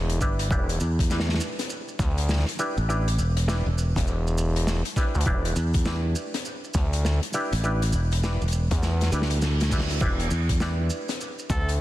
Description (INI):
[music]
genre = glitch hop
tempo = 101 BPM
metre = 4/4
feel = swing 63% on 16ths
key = E minor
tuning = A4 = 439 Hz
[part]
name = gritty driven synth bass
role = bass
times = 0.0-11.8 s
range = E1 to E2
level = -24 LUFS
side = equal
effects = none
[part]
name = loose indie drum kit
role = drums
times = 0.1-11.8 s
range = crash cymbal, hi-hat, snare drum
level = -31 LUFS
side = left 2 dB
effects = none
[part]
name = auto-wah clav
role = stabs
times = 0.2-11.8 s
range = D4 to B4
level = -32 LUFS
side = equal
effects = sidechain pumping, low-pass filter, ping-pong delay
[part]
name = modern bright fingered electric bass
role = bass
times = 0.2-10.9 s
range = E1 to E2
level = -24 LUFS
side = equal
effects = tube saturation
[part]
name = electronic kick drum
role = drums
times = 0.2-11.6 s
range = none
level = -25 LUFS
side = equal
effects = overdrive
[part]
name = maracas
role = percussion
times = 0.2-11.8 s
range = none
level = -39 LUFS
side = right 4 dB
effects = none
[part]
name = reverse cymbal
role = sound effects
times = 9.2-10.0 s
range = none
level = -37 LUFS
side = right 4 dB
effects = none
[part]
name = clear trumpet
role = melody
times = 11.5-11.7 s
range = A4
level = -31 LUFS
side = equal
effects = none
[sound]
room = little or no reverb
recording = dense, heavily limited modern master, vinyl crackle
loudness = -22 LUFS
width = side -15 dB against mid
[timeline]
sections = 0.0-11.8 A section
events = drum fill 8.8-10.0; reverse cymbal 9.2-10.0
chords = 0.0 Em7